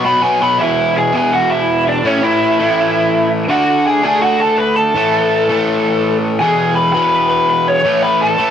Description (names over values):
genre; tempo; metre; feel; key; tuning
punk; 166 BPM; 4/4; straight; E mixolydian; A4 = 441 Hz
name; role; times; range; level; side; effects
biting lead guitar; melody; 0.0-8.5 s; C#4 to C#6; -13 LUFS; left 1 dB; overdrive, cassette tape, tape echo
overdriven semi-hollow guitar; riff; 0.0-8.5 s; E2 to D4; -16 LUFS; equal; none
room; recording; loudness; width
moderate booth ambience, RT60 0.2 s; home recording on cassette; -12 LUFS; side -9 dB against mid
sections
0.6-8.5 A section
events
none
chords
0.0 B5; 0.6 E; 2.0 A; 3.5 D; 4.9 A5; 6.4 E; 7.8 A